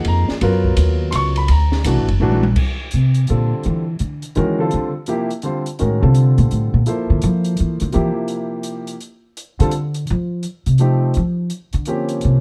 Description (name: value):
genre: modal jazz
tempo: 168 BPM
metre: 3/4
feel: swing 65% on 8ths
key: G dorian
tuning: A4 = 440 Hz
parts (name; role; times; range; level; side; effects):
- warm concert grand piano; accompaniment; 0.0-12.4 s; C3 to C#6; -23 LUFS; equal; none
- upright bass; bass; 0.0-12.4 s; F#1 to F3; -18 LUFS; equal; none
- open jazz drum kit; drums; 0.0-12.3 s; crash cymbal, hi-hat, kick drum, ride cymbal, snare drum, toms; -28 LUFS; equal; none
room: little or no reverb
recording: dark, warm production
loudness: -18 LUFS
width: mono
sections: 0.0-2.6 A section; 2.6-11.1 A section; 11.1-12.4 A section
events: drum fill 2.2-2.6; upright bass solo 2.6-12.4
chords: 0.0 F#; 1.5 D(b13); 2.6 Gm9; 6.9 Dmadd9; 10.1 F7; 11.1 Bbm69